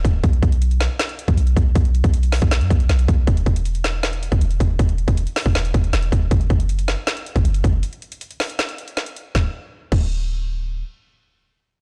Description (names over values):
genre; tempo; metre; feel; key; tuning
hip hop, trap; 158 BPM; 4/4; half-time; unclear; A4 = 440 Hz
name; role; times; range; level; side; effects
clean 808-style bass; bass; 0.0-10.8 s; D1 to F#2; -21 LUFS; equal; none
trap drum kit; drums; 0.0-10.0 s; crash cymbal, hi-hat, kick drum, snare drum; -22 LUFS; equal; none
room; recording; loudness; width
little or no reverb; blown-out, overdriven recording, overdrive; -20 LUFS; mono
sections
0.0-9.3 A section; 9.3-11.8 B section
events
break 7.8-9.3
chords
none